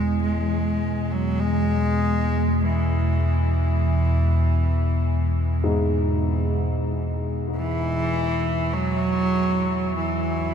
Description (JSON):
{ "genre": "dark ambient drone", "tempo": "free time", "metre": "none", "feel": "none", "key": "unclear", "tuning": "A4 = 440 Hz", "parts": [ { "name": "clear cello", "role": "melody", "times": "0.0-10.5 s", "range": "E3 to G#3", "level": "-25 LUFS", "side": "right 1 dB", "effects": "ping-pong delay" }, { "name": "deep rumbling drone", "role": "drone", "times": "0.0-10.5 s", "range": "E2 to B2", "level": "-22 LUFS", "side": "equal", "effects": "built-in reverb" }, { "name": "dark grand piano", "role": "arpeggios", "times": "5.6-10.5 s", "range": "G#2", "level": "-29 LUFS", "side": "left 1 dB", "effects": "ping-pong delay" } ], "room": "wet huge ambient reverb, RT60 7.9 s", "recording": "in a vast, echoing space", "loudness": "-20 LUFS", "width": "side -8 dB against mid", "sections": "0.0-10.5 A section", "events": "none", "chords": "0.0 E" }